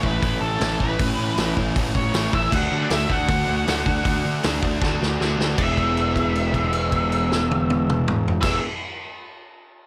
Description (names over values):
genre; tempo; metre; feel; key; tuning
garage rock duo or trio; 157 BPM; 4/4; straight; E mixolydian; A4 = 441 Hz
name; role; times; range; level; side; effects
octave-fuzz lead guitar; melody; 0.0-8.6 s; A4 to F#5; -28 LUFS; equal; distortion
overdriven electric guitar; riff; 0.0-8.6 s; A2 to F#4; -27 LUFS; equal; spring reverb
fuzz picked electric bass; bass; 0.0-8.6 s; E1 to D3; -29 LUFS; equal; overdrive
vintage drum kit; drums; 0.0-8.5 s; crash cymbal, hi-hat, kick drum, snare drum, toms; -27 LUFS; equal; none
room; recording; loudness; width
light reverb; none; -22 LUFS; mono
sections
0.0-5.6 A section; 5.6-8.7 B section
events
drum fill 4.8-5.6; held note 5.6-8.4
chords
0.0 A; 2.5 D; 5.6 E